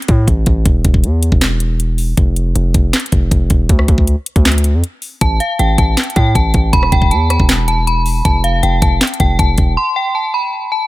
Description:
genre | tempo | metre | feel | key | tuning
hip hop, trap | 158 BPM | 4/4 | half-time | unclear | A4 = 436 Hz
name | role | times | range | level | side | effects
trap drum kit | drums | 0.0-9.7 s | handclaps, hi-hat, kick drum, rim click, snare drum | -14 LUFS | equal | none
distorted 808-style bass | bass | 0.1-9.8 s | E1 to A2 | -14 LUFS | equal | distortion
metallic FM bell | melody | 5.2-10.9 s | F5 to C6 | -16 LUFS | equal | chorus, low-pass filter, digital delay
room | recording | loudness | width
digital ambience | none | -11 LUFS | side -18 dB against mid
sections
0.0-10.9 A section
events
break 0.0-5.2, 9.8-10.9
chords
0.0 N.C.; 5.2 Fadd9/A (rootless); 6.7 E5; 8.2 Fadd9; 9.8 N.C.

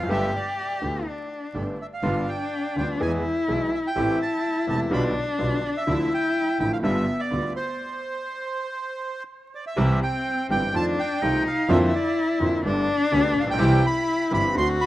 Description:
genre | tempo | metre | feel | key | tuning
tango | 125 BPM | 4/4 | rubato | C major | A4 = 441 Hz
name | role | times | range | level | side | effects
bandoneon | melody | 0.0-14.9 s | C5 to C6 | -28 LUFS | right 2 dB | analog delay
warm cello | second line | 0.0-14.9 s | B3 to G4 | -25 LUFS | left 2 dB | none
clear concert grand piano | accompaniment | 0.0-14.8 s | E1 to G#4 | -26 LUFS | equal | none
warm double bass | bass | 0.0-14.8 s | E1 to F2 | -28 LUFS | right 1 dB | none
clear symphonic string section | stabs | 0.1-14.8 s | F3 to Bb4 | -39 LUFS | right 3 dB | none
room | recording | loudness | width
light reverb | rough home demo mix, vinyl crackle | -22 LUFS | side -15 dB against mid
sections
0.0-9.8 A section; 9.8-14.9 B section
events
stop 7.8-9.8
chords
0.1 Gadd9; 2.0 G7; 3.0 E; 4.0 Am7; 4.9 G7/B; 5.9 Dmadd9; 6.8 G7; 7.8 N.C.; 9.8 C; 10.7 F7; 11.7 Bbadd9/F; 12.7 Gadd9; 13.6 C

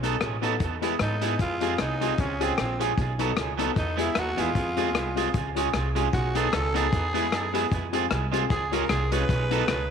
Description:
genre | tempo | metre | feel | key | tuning
ska | 152 BPM | 4/4 | swing 56% on 8ths | unclear | A4 = 442 Hz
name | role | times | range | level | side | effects
electric guitar at the edge of break-up | accompaniment | 0.0-9.7 s | Gb3 to A4 | -29 LUFS | right 11 dB | spring reverb, tape echo
dark upright piano | stabs | 0.0-9.6 s | Cb4 to A4 | -31 LUFS | left 9 dB | tape echo
upright bass | bass | 0.0-9.9 s | A1 to G#2 | -30 LUFS | right 1 dB | none
vintage drum kit | drums | 0.0-9.8 s | hi-hat, kick drum, rim click | -30 LUFS | left 3 dB | none
growling tenor saxophone | melody | 1.0-9.9 s | C4 to Cb5 | -30 LUFS | right 1 dB | none
room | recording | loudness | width
moderate echo chamber reverb, RT60 2.1 s | 1960s-style stereo with parts hard left and right | -23 LUFS | side -7 dB against mid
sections
0.0-9.9 A section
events
tenor saxophone solo 0.0-9.9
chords
0.0 Cb7; 0.6 E; 1.4 Fm; 2.2 Db; 3.0 Cb7; 3.8 E; 4.6 Fm; 5.3 Db; 6.1 Cb7; 6.9 E; 7.7 Fm; 8.5 Db; 9.3 Cb7

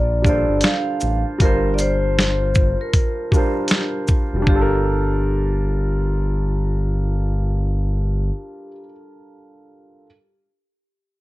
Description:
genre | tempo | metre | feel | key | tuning
lo-fi hip hop | 78 BPM | 4/4 | swing 61% on 16ths | G minor | A4 = 440 Hz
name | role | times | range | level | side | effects
vibraphone with medium hard mallets | melody | 0.0-8.8 s | G4 to F5 | -25 LUFS | left 1 dB | low-pass filter, plate reverb
dark upright piano | accompaniment | 0.0-10.1 s | G3 to C5 | -25 LUFS | right 1 dB | low-pass filter, plate reverb
smooth synth bass | bass | 0.0-8.3 s | F1 to Bb1 | -20 LUFS | equal | none
dusty soul sampler-style drum kit | drums | 0.2-4.7 s | hi-hat, kick drum, shaker, snare drum | -18 LUFS | equal | none
room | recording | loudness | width
little or no reverb | cassette tape | -17 LUFS | side -18 dB against mid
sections
0.0-4.5 A section; 4.5-7.5 B section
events
none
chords
0.0 Gm9

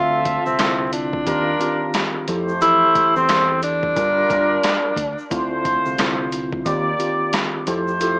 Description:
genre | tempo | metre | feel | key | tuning
hip hop, boom-bap hip-hop | 89 BPM | 4/4 | swing 61% on 16ths | D minor | A4 = 441 Hz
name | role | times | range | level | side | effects
breathy tenor saxophone | melody | 0.0-5.3 s | C4 to F4 | -18 LUFS | equal | high-pass filter, low-pass filter
mellow tine electric piano | accompaniment | 0.0-8.2 s | D3 to E5 | -24 LUFS | equal | medium stereo tremolo, cassette tape, high-pass filter, low-pass filter
warm horn section | stabs | 0.0-8.2 s | F3 to E5 | -24 LUFS | equal | high-pass filter, low-pass filter, digital delay
deep dub fingered electric bass | bass | 0.0-8.2 s | G1 to F2 | -30 LUFS | equal | none
boom bap sampler-style drum kit | drums | 0.3-8.2 s | hi-hat, kick drum, rim click, snare drum | -23 LUFS | equal | none
egg shaker | percussion | 0.3-8.2 s | none | -49 LUFS | left 1 dB | none
room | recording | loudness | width
light reverb | vinyl crackle, small speaker sound | -16 LUFS | side -30 dB against mid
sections
0.0-8.2 A section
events
none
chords
0.0 Dm9; 1.3 Eb69; 2.3 Fmaj9; 4.0 Gm7; 5.3 Dm9; 6.7 Eb69; 7.7 Fmaj9

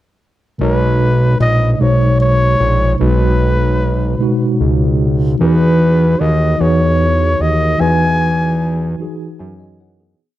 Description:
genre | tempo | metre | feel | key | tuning
slow six-eight R&B | 50 BPM (dotted quarters) | 6/8 | straight | B major | A4 = 441 Hz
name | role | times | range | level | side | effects
mellow flugelhorn | melody | 0.6-9.0 s | B4 to G#5 | -18 LUFS | left 1 dB | none
mellow tine electric piano | accompaniment | 0.6-10.4 s | B2 to G#5 | -17 LUFS | equal | medium stereo tremolo
fat analog bass | bass | 0.6-10.2 s | A#1 to F#2 | -14 LUFS | equal | none
room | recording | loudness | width
studio reverb | none | -11 LUFS | side -14 dB against mid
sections
0.6-10.2 verse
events
fade-out 7.8-10.2; tine electric piano fill 9.0-10.2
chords
0.6 B69; 5.4 Emaj9

